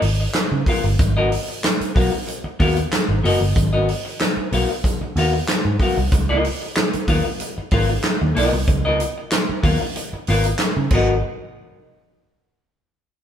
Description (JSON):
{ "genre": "funk", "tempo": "94 BPM", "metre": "4/4", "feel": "straight", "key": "G# dorian", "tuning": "A4 = 440 Hz", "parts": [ { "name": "semi-hollow electric guitar", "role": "accompaniment", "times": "0.0-11.1 s", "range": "B3 to E#5", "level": "-22 LUFS", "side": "left 2 dB", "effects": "none" }, { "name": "vintage muted picked electric bass", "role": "bass", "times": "0.0-11.2 s", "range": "F#1 to C#3", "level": "-21 LUFS", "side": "equal", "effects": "none" }, { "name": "swinging big-band drum kit", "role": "drums", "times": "0.0-11.1 s", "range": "crash cymbal, handclaps, hi-hat, kick drum, snare drum", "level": "-21 LUFS", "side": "equal", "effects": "none" } ], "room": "moderate stone room reverb, RT60 1.4 s", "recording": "band playing live in one room", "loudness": "-17 LUFS", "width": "side -9 dB against mid", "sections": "0.0-11.2 A section; 11.2-13.2 B section", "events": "none", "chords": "0.0 C#13 (rootless); 1.0 G#m9; 6.1 C#13; 10.9 G#m9; 11.2 N.C." }